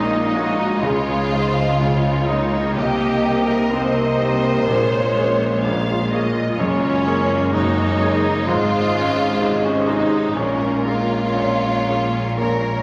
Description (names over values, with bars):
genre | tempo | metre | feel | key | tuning
cinematic | 62 BPM | 4/4 | rubato | Bb minor | A4 = 441 Hz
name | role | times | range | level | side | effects
rich studio violin section | melody | 0.0-12.8 s | Bb4 to F5 | -32 LUFS | equal | none
clear studio violin section | second line | 0.0-12.8 s | Db4 to C5 | -27 LUFS | equal | none
dark cor anglais | second line | 0.0-12.8 s | Db4 to C5 | -30 LUFS | equal | none
hollow large flute ensemble | second line | 0.0-12.8 s | Db5 to F5 | -31 LUFS | equal | none
mellow clarinet | second line | 0.0-12.8 s | Ab3 to Bb3 | -29 LUFS | equal | none
clear grand piano | accompaniment | 0.0-12.8 s | Gb1 to Eb5 | -27 LUFS | equal | none
warm symphonic viola section | accompaniment | 0.0-12.8 s | C3 to Ab4 | -28 LUFS | equal | none
mellow French horn section | sustained chords | 0.0-12.8 s | Db4 to Bb4 | -29 LUFS | equal | none
rich studio cello section | bass | 0.0-12.8 s | Gb2 to Db3 | -30 LUFS | equal | none
rich studio double bass section | bass | 0.0-12.8 s | Gb1 to Db2 | -28 LUFS | equal | none
room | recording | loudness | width
wet scoring stage reverb, RT60 2.0 s | vinyl crackle | -19 LUFS | mono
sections
0.0-12.8 A section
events
none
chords
0.0 Bbm7; 0.8 Dbsus2; 2.8 Cm7; 4.7 Bbm7; 6.6 Gbadd9; 8.5 Dbsus2/Ab; 10.4 Bbm7